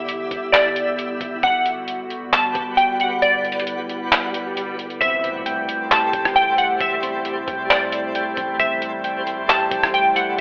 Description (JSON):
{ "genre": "hip hop, atmospheric cloud-rap", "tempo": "134 BPM", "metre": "4/4", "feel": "half-time", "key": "unclear", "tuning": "A4 = 440 Hz", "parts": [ { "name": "glassy wavetable pluck", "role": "melody", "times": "0.0-10.4 s", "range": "D5 to A5", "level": "-22 LUFS", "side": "equal", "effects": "chorus, tape echo" }, { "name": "warbly tape-like pad", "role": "sustained chords", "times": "0.0-10.4 s", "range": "C3 to G4", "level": "-33 LUFS", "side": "equal", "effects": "chorus, built-in reverb, sidechain pumping" }, { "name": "soft 808-style bass", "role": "bass", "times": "0.0-10.4 s", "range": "E1 to E2", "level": "-48 LUFS", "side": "equal", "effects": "none" }, { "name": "twinkling granular texture", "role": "texture", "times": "0.0-10.4 s", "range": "G3 to E5", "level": "-32 LUFS", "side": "equal", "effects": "built-in reverb" }, { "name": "lo-fi sampler-style drum kit", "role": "drums", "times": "0.1-10.3 s", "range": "handclaps, hi-hat, kick drum, rim click", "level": "-23 LUFS", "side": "equal", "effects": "none" }, { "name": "swell and impact", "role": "sound effects", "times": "4.0-6.8 s", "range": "none", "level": "-38 LUFS", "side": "equal", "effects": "none" }, { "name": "soft electric-piano-like synth keys", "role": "arpeggios", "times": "5.0-10.4 s", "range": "C4 to G5", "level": "-28 LUFS", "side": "equal", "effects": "chorus, tape echo" } ], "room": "moderate lush hall reverb, RT60 1.9 s, digital ambience", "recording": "telephone sound", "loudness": "-20 LUFS", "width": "mono", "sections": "0.0-5.0 A section; 5.0-10.4 B section", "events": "kick muted 3.2-5.0; swell 4.0-5.0; impact 5.0-6.8", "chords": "0.0 Em7; 1.4 Gmaj7; 5.0 Am7" }